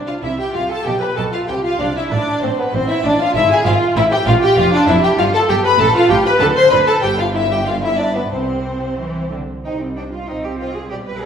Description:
quick classical-period movement for string orchestra; 96 BPM; 2/4; rubato; C major; A4 = 440 Hz
rich studio viola section; accompaniment; 0.0-11.3 s; G3 to C5; -20 LUFS; right 1 dB
rich symphonic violin section; melody; 0.1-11.3 s; B4 to C6; -19 LUFS; left 4 dB
warm symphonic violin section; second line; 0.1-11.3 s; B3 to Eb5; -19 LUFS; left 1 dB
rich symphonic cello section; bass; 0.2-11.3 s; F2 to B4; -24 LUFS; right 2 dB
warm symphonic double bass section; bass; 0.2-11.3 s; F1 to D2; -24 LUFS; right 2 dB
wet recital hall reverb, RT60 1.4 s; recorded in a church or concert hall; -14 LUFS; side -8 dB against mid
0.0-9.6 A section; 9.6-11.3 A section
0.0 Fmaj9/C; 0.9 G9/B; 1.5 Dm11; 2.1 Dm13/A; 3.4 Fmmaj7/Ab; 4.0 Fadd9/A; 4.6 Dmadd9/F; 5.2 G9; 5.8 G9/A; 6.4 Bm7/D; 7.0 Em/G; 8.3 C; 9.6 Cm

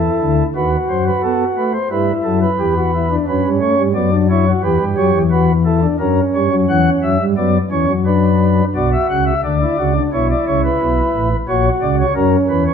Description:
classical, baroque-style 3-part fugue for pipe organ; 88 BPM; 4/4; straight; B minor from 8.7 s; A4 = 443 Hz
pipe organ, flutes; solo; 0.0-12.7 s; A1 to F#5; -13 LUFS; left 1 dB
wet recital hall reverb, RT60 1.3 s; -13 LUFS; side -7 dB against mid
0.0-8.7 A section; 8.7-12.7 B section
0.0 F#m7/E (rootless); 0.6 B7/D#; 1.9 Em; 3.3 Bm/F#; 4.6 C#m7b5/E; 6.0 F#7; 7.4 Bm; 10.1 Aadd9; 11.5 F#7/A#

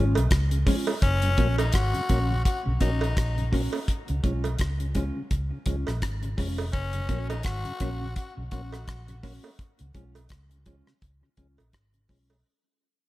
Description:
roots reggae; 84 BPM; 4/4; swing 58% on 16ths; F# major; A4 = 439 Hz
mellow electric guitar; accompaniment; 0.0-12.3 s; G#3 to F#4; -34 LUFS; right 1 dB; wide subtle chorus, tape echo
mellow tonewheel organ; accompaniment; 0.0-12.4 s; F#2 to C#4; -36 LUFS; left 1 dB; overdrive, chorus vibrato, slow rotary speaker
vintage muted fingered electric bass; bass; 0.0-12.4 s; E#1 to C#2; -27 LUFS; equal
damped 70s drum kit; drums; 0.2-12.3 s; hi-hat, kick drum, rim click; -27 LUFS; equal
cowbell; percussion; 0.2-12.4 s; -34 LUFS; right 6 dB
raspy tenor saxophone; second line; 1.0-9.2 s; C#4 to F#4; -32 LUFS; left 3 dB; tape echo
small room ambience; echo-heavy mix; -24 LUFS; side -17 dB against mid
0.0-1.0 A section; 1.0-12.4 B section
fade-out 1.0-12.4
0.0 C#; 1.0 F#; 3.9 C#; 6.7 F#; 9.6 C#

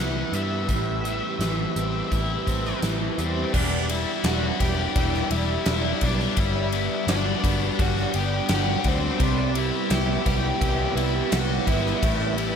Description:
rock, shoegaze and dream pop; 85 BPM; 4/4; straight; E minor; A4 = 436 Hz
octave-fuzz lead guitar; melody; 0.0-12.6 s; C4 to F#5; -31 LUFS; equal; distortion, tape echo
string machine, cellos; sustained chords; 0.0-12.6 s; G3 to B5; -32 LUFS; equal; ensemble chorus
direct-recorded clean electric guitar; arpeggios; 0.0-12.6 s; G3 to E4; -34 LUFS; right 10 dB; ensemble chorus, tape echo
biting overdriven guitar; riff; 0.0-12.6 s; E2 to G4; -29 LUFS; left 10 dB; wide subtle chorus
overdriven electric guitar; riff; 0.0-3.5, 9.2-12.6 s; A2 to E4; -31 LUFS; right 8 dB; reverse reverb
vintage muted picked electric bass; bass; 0.0-12.5 s; E1 to G2; -27 LUFS; equal
gated 80s drum kit; drums; 0.3-12.5 s; crash cymbal, hi-hat, kick drum, ride cymbal, snare drum; -27 LUFS; equal
moderate lush hall reverb, RT60 2.2 s; dreamy mix soaked in reverb; -21 LUFS; side -7 dB against mid
0.0-3.5 A section; 3.5-12.6 B section
0.0 Cmaj7; 0.7 Am7; 3.5 Em7; 6.4 Gmaj7; 9.2 Cmaj7; 12.0 A7(no3)

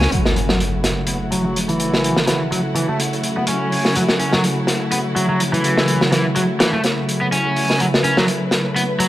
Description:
breakbeat, breaks; 125 BPM; 4/4; swing 55% on 16ths; F# minor; A4 = 440 Hz
warm studio string section; sustained chords; 0.0-9.1 s; C#3 to B4; -21 LUFS; equal
cranked stack guitar; riff; 0.0-9.1 s; E3 to C#4; -20 LUFS; equal; overdrive, low-pass filter, tape echo
crunchy breakbeat drum kit; drums; 0.0-9.1 s; hi-hat, snare drum; -20 LUFS; equal; high-pass filter on kick, high-pass filter on hats, high-pass filter on snare, high-pass filter on room
impact; sound effects; 0.1-2.0 s; -24 LUFS; equal
moderate plate reverb, RT60 2.5 s; dark, warm production; -16 LUFS; side -14 dB against mid
0.1-9.1 A section
impact 0.1-2.0; filter sweep on overdriven electric guitar 0.1-9.1
0.1 F#m7

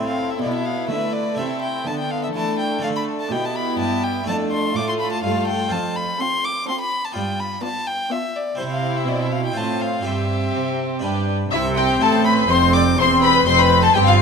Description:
classical, baroque-style concerto movement with solo episodes; 124 BPM; 3/4; straight; C major from 5.7 s; A4 = 441 Hz
rich chamber violin section; melody; 0.0-14.2 s; G4 to D6; -24 LUFS; left 5 dB
rich violin; melody; 0.0-14.1 s; C5 to D6; -24 LUFS; left 2 dB
rich chamber violin section; second line; 0.0-14.2 s; D4 to D5; -25 LUFS; left 4 dB
dark chamber viola section; accompaniment; 0.0-14.2 s; A3 to D4; -24 LUFS; equal
harpsichord; accompaniment; 0.0-14.2 s; E2 to D5; -29 LUFS; right 2 dB
warm chamber cello section; bass; 0.0-14.2 s; E2 to E3; -24 LUFS; right 4 dB
warm chamber double bass section; bass; 11.5-14.2 s; E1 to C2; -25 LUFS; right 5 dB
moderate concert hall reverb, RT60 1.9 s; -18 LUFS; side -5 dB against mid
0.0-11.5 A section; 11.5-14.2 B section
0.0 Am; 1.4 Am/C; 2.8 D5; 4.3 Dm/F; 5.7 F; 7.2 G7; 8.6 C; 9.6 F/A; 10.0 C/G; 11.0 G; 11.5 C5; 13.0 C/E

